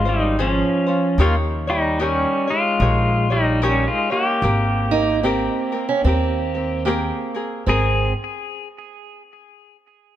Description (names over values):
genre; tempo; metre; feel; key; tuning
Hawaiian; 74 BPM; 4/4; swing 60% on 8ths; Ab major; A4 = 439 Hz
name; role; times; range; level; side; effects
pedal steel guitar; melody; 0.0-8.1 s; F3 to Ab4; -21 LUFS; left 1 dB; ping-pong delay
tenor ukulele; accompaniment; 0.0-8.1 s; C4 to Db5; -25 LUFS; left 2 dB; none
upright bass; bass; 0.0-8.1 s; Ab1 to Eb2; -21 LUFS; equal; none
fingerpicked steel-string acoustic guitar; second line; 4.9-8.1 s; Bb3 to Eb4; -22 LUFS; right 6 dB; none
room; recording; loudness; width
light reverb; none; -17 LUFS; side -12 dB against mid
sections
0.0-7.7 A section; 7.7-10.2 B section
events
none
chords
0.0 Dbmaj7; 1.2 Eb7; 4.4 Abmaj9; 7.7 Abadd9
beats
0.37 | 1.18 2.00 2.81 3.62 | 4.42 5.24 6.04 6.85 | 7.66